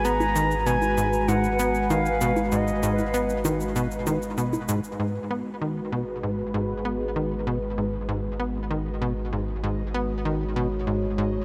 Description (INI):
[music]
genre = ambient, sequencer-driven space music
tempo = 97 BPM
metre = 4/4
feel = straight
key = G# minor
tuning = A4 = 440 Hz
[part]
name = mellow wooden flute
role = melody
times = 0.0-3.4 s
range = D#5 to A#5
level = -30 LUFS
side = equal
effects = tape echo
[part]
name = sweeping resonant pad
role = sustained chords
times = 0.0-11.4 s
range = G#3 to C#5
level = -32 LUFS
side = equal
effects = chorus
[part]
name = tight sequencer bass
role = riff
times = 0.0-11.4 s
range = G#2 to B3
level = -30 LUFS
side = equal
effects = tape echo
[part]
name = warm sub bass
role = bass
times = 0.0-11.4 s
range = G#1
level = -35 LUFS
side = equal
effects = none
[part]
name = bubbling stepped-filter texture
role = texture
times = 0.0-11.4 s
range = B4 to D#5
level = -40 LUFS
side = equal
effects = none
[part]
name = cabasa and bongos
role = percussion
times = 0.1-5.0 s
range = none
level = -35 LUFS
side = equal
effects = tape echo
[sound]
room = wet huge ambient reverb, RT60 8.1 s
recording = none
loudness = -26 LUFS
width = mono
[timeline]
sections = 0.0-5.0 A section; 5.0-11.4 B section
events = none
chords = 0.0 G#m7